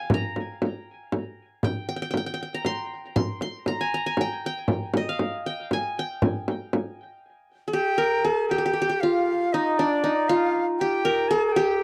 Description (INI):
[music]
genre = Arabic maqam ensemble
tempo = 118 BPM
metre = 3/4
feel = straight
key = G maqam kurd, G maqam bayati from 7.7 s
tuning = A4 = 440 Hz
[part]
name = qanun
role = melody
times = 0.0-11.8 s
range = D4 to C6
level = -27 LUFS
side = equal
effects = tape echo
[part]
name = frame drum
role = percussion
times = 0.1-6.8 s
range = none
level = -28 LUFS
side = equal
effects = none
[part]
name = breathy bright jazz flute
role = second line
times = 7.7-11.8 s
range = D5 to Ab5+50c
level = -30 LUFS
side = equal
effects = none
[sound]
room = light reverb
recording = dry, close 1970s-style studio recording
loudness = -25 LUFS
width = mono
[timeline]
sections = 0.0-7.7 A section; 7.7-11.8 B section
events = stop 7.2-7.7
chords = none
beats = | 0.10 0.61 1.12 | 1.63 2.14 2.65 | 3.16 3.67 4.18 | 4.69 5.20 5.71 | 6.22 6.73 7.23 | 7.74 8.25 8.76 | 9.27 9.77 10.28 | 10.79 11.29 11.80